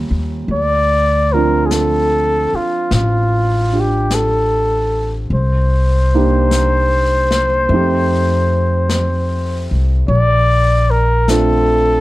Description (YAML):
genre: jazz ballad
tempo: 50 BPM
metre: 4/4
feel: swing 69% on 8ths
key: unclear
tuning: A4 = 440 Hz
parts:
  - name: warm grand piano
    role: accompaniment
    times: 0.0-12.0 s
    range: F3 to G4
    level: -21 LUFS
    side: right 4 dB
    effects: none
  - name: upright bass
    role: bass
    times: 0.0-12.0 s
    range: A1 to F2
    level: -16 LUFS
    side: left 1 dB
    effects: none
  - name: breathy trumpet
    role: melody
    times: 0.5-12.0 s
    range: F4 to D5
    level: -16 LUFS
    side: equal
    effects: none
  - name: vintage brush drum kit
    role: drums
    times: 0.5-12.0 s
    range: brushed snare drum, hi-hat, snare drum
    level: -27 LUFS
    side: left 3 dB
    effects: none
room: moderate studio reverb, RT60 0.7 s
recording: dark, warm production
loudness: -12 LUFS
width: side -17 dB against mid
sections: 0.0-12.0 A section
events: none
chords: 0.0 Eb9; 0.5 Dm7; 5.3 Cm7; 7.7 F9; 10.1 Bbmaj9